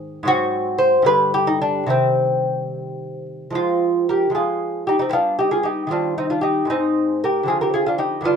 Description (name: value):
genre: classical, baroque-style dance for lute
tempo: 70-79 BPM (dotted quarters)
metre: 6/8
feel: rubato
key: unclear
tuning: A4 = 439 Hz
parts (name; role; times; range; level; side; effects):
- lute; solo; 0.0-8.4 s; G2 to C5; -17 LUFS; equal; none
room: little or no reverb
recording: close, detailed microphones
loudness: -17 LUFS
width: side -6 dB against mid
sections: 0.0-3.6 A section; 3.6-8.4 A section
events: none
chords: 0.3 Ab7; 1.1 G5; 1.9 Cm; 3.6 Fm; 5.1 G7; 5.9 Cm/Eb; 6.7 Ab; 7.5 Fm13/D